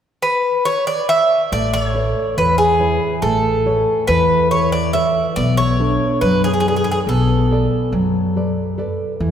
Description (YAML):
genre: greek folk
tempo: 140 BPM (eighths)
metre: 9/8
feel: straight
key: A major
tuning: A4 = 441 Hz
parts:
  - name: Greek bouzouki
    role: melody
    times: 0.2-8.7 s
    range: G#4 to E5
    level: -17 LUFS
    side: equal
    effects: none
  - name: nylon-string guitar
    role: accompaniment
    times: 1.5-9.3 s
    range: E3 to D5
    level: -21 LUFS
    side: right 1 dB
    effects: none
  - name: upright bass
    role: bass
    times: 1.5-9.3 s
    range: A1 to F#2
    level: -20 LUFS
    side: equal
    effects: none
room: wet church reverb, RT60 3.4 s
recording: recorded in a church or concert hall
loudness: -14 LUFS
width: side -9 dB against mid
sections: 0.0-1.5 A section; 1.5-9.3 B section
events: none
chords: 0.0 N.C.; 1.5 Aadd9; 5.4 Bm7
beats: 0.23 0.66 1.09 | 1.52 1.95 2.37 2.80 3.23 3.66 4.08 4.51 4.94 | 5.37 5.79 6.22 6.64 7.07 7.50 7.92 8.35 8.78 | 9.20